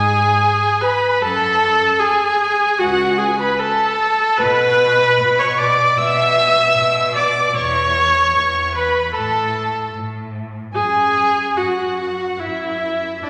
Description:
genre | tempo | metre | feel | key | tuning
classical, slow romantic movement for string quartet | 75 BPM | 4/4 | rubato | unclear | A4 = 440 Hz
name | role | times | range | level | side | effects
rich violin | melody | 0.0-13.3 s | D5 to E6 | -28 LUFS | equal | none
rich violin | second line | 0.0-13.3 s | D5 to E6 | -24 LUFS | equal | none
rich viola | accompaniment | 0.0-13.3 s | D4 to E5 | -18 LUFS | equal | none
rich cello | bass | 0.0-13.3 s | C#2 to B2 | -28 LUFS | equal | none
room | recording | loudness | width
wet scoring stage reverb, RT60 1.6 s | none | -17 LUFS | mono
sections
0.0-13.3 A section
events
none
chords
0.0 E/G# (rootless); 1.2 F#m; 4.4 Bmadd11; 7.6 C#m7/E; 9.1 N.C.; 10.7 F#sus2

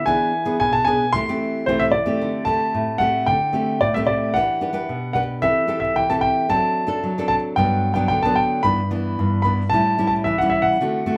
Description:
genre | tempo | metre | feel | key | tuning
samba | 112 BPM | 4/4 | straight | unclear | A4 = 440 Hz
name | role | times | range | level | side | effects
warm concert grand piano | melody | 0.0-11.2 s | C5 to C6 | -22 LUFS | equal | none
nylon-string guitar | accompaniment | 0.0-11.2 s | G2 to B4 | -24 LUFS | equal | none
room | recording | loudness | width
wet studio reverb, RT60 0.5 s | band playing live in one room | -20 LUFS | mono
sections
0.0-11.2 A section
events
none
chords
0.1 E7; 1.1 Am7/E; 2.2 D7sus4; 4.4 Em7; 5.4 Am7/E; 6.5 D7/F#; 7.6 Gmaj7; 8.6 Em7/G; 9.7 A7

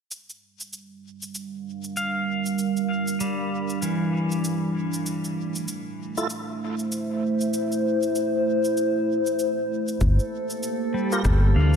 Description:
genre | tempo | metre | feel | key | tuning
ambient dub | 97 BPM | 4/4 | swing 59% on 16ths | G dorian | A4 = 440 Hz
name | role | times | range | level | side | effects
warbly tape-like pad | sustained chords | 1.3-11.8 s | G3 to F5 | -25 LUFS | right 1 dB | chorus, built-in reverb
electronic cabasa and rim click | drums | 0.1-11.8 s | none | -36 LUFS | equal | dub echo
pedal steel guitar | arpeggios | 2.0-5.7, 10.9-11.8 s | E3 to F5 | -28 LUFS | left 1 dB | low-pass filter, diffuse ambient delay
tonewheel organ | stabs | 6.2-6.3, 11.1-11.2 s | E4 to Bb4 | -30 LUFS | right 1 dB | chorus vibrato, fast rotary speaker, dub echo
fingered electric bass | bass | 10.0-11.8 s | G1 to D2 | -18 LUFS | equal | none
electronic kick drum | drums | 10.0-11.4 s | none | -27 LUFS | equal | none
drifting glass-harmonics texture | texture | 10.2-11.8 s | A4 | -37 LUFS | left 2 dB | chorus, built-in reverb
room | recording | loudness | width
wet lush hall reverb, RT60 2.2 s | dreamy mix soaked in reverb | -23 LUFS | side -7 dB against mid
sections
0.1-10.0 A section; 10.0-11.8 B section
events
filter sweep on ambient pad 0.1-10.0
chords
0.1 Gm7; 5.1 Fmaj7 (rootless); 10.0 Gm7

